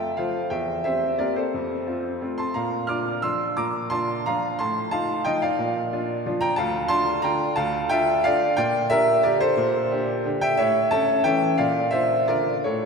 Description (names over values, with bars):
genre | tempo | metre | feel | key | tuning
classical, piano waltz | 154-193 BPM | 3/4 | rubato | F major, D minor from 6.6 s | A4 = 440 Hz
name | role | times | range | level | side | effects
bright upright piano | solo | 0.0-12.9 s | D2 to F6 | -21 LUFS | equal | none
room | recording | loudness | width
wet church reverb, RT60 3.0 s | none | -21 LUFS | side -5 dB against mid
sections
0.0-12.9 A section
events
none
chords
0.0 F; 0.5 C7/E; 1.5 F; 2.6 Bb; 4.6 F7/A; 5.6 Bb; 6.6 Dm; 8.6 Gm/Bb; 10.6 A; 11.6 Bb